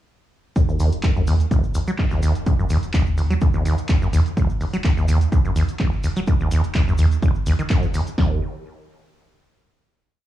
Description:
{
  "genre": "acid house",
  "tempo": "126 BPM",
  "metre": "4/4",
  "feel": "swing 53% on 16ths",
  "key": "Eb minor",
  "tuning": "A4 = 442 Hz",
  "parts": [
    { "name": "acid bass, saw", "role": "riff", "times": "0.6-8.4 s", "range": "Eb1 to Gb3", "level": "-21 LUFS", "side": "equal", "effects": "cassette tape, analog delay" },
    { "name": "saturated sub bass", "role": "bass", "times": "0.6-8.4 s", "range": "Eb1 to Eb2", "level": "-24 LUFS", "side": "right 1 dB", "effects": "none" },
    { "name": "punchy analog drum machine", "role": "drums", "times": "0.6-8.3 s", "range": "kick drum, snare drum", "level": "-20 LUFS", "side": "equal", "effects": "cassette tape" },
    { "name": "punchy analog drum machine", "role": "drums", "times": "0.6-8.2 s", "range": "handclaps, hi-hat", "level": "-34 LUFS", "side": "equal", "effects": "cassette tape" },
    { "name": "cabasa", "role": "percussion", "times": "0.6-8.2 s", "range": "none", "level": "-44 LUFS", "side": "left 4 dB", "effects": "none" }
  ],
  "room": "little or no reverb",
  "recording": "home recording on cassette, studio reverb",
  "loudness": "-17 LUFS",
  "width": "side -13 dB against mid",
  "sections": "0.6-8.2 groove; 8.2-10.1 final note",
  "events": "none",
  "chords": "none"
}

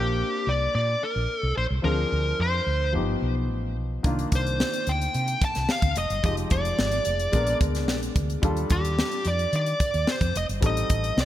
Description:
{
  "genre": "polished 1980s jazz-funk pop",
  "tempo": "109 BPM",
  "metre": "4/4",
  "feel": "straight",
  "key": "unclear",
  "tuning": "A4 = 438 Hz",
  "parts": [
    { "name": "fuzz lead guitar", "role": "melody", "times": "0.0-11.2 s", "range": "G4 to A5", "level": "-27 LUFS", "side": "equal", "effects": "distortion, ping-pong delay" },
    { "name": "warm baby grand piano", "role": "accompaniment", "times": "0.0-11.2 s", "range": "Eb3 to Bb4", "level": "-31 LUFS", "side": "left 2 dB", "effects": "wide subtle chorus" },
    { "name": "woody fretless electric bass", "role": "bass", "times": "0.0-11.2 s", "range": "F1 to Eb3", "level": "-27 LUFS", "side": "equal", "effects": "none" },
    { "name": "crisp fusion drum kit", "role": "drums", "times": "4.0-11.2 s", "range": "hi-hat, kick drum, snare drum", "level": "-26 LUFS", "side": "equal", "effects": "none" }
  ],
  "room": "light reverb",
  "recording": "bright 1980s-style digital production",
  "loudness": "-22 LUFS",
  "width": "side -13 dB against mid",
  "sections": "0.0-11.2 A section",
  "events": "none",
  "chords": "0.0 Bbadd9; 1.8 Dm7b5; 2.9 G7b13; 4.0 Cm11; 6.2 Fm9; 7.3 Bb7b9; 8.4 Ebmaj9#11; 10.6 Am7b5"
}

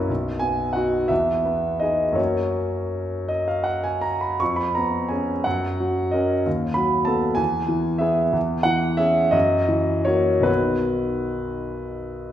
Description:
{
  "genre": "classical, romantic character piece for solo piano",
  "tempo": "48-66 BPM (dotted quarters)",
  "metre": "6/8",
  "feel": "rubato",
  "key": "B major",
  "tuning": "A4 = 441 Hz",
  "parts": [
    { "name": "clear concert grand piano", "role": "solo", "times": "0.0-12.3 s", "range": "B1 to C#6", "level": "-20 LUFS", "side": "equal", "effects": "none" }
  ],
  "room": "wet recital hall reverb, RT60 1.4 s",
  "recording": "recorded in a church or concert hall",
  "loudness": "-20 LUFS",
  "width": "side -11 dB against mid",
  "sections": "0.0-12.3 A section",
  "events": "none",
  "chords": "0.1 B; 1.1 Emaj7; 2.2 F#; 4.4 C#7/E#; 5.5 F#; 6.5 B7/D#; 7.4 E; 8.4 C#m/E; 9.3 F#7; 10.5 B"
}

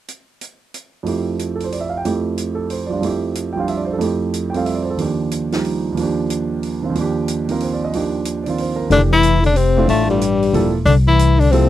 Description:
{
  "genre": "modal jazz",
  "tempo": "184 BPM",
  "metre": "3/4",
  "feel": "swing 64% on 8ths",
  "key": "F mixolydian",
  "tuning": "A4 = 440 Hz",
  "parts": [
    { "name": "vintage drum kit", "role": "drums", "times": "0.1-11.6 s", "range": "hi-hat, snare drum", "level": "-33 LUFS", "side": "right 2 dB", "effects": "none" },
    { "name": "warm concert grand piano", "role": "accompaniment", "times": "1.0-11.7 s", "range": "Eb2 to G5", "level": "-19 LUFS", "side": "right 4 dB", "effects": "none" },
    { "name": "warm tenor saxophone", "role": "melody", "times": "8.9-11.7 s", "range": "G3 to E4", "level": "-16 LUFS", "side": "left 2 dB", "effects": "none" },
    { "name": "mellow trombone", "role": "second line", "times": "8.9-11.7 s", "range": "G2 to E3", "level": "-19 LUFS", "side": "left 9 dB", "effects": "none" },
    { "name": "upright bass", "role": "bass", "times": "8.9-11.7 s", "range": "E1 to C2", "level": "-15 LUFS", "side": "left 1 dB", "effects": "none" }
  ],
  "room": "little or no reverb",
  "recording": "dry, close 1970s-style studio recording",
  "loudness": "-16 LUFS",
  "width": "side -13 dB against mid",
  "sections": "1.1-8.9 A section; 8.9-11.7 B section",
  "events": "none",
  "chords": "0.1 N.C.; 1.1 Fmaj9; 5.0 Ebmaj9; 8.9 Fmaj9"
}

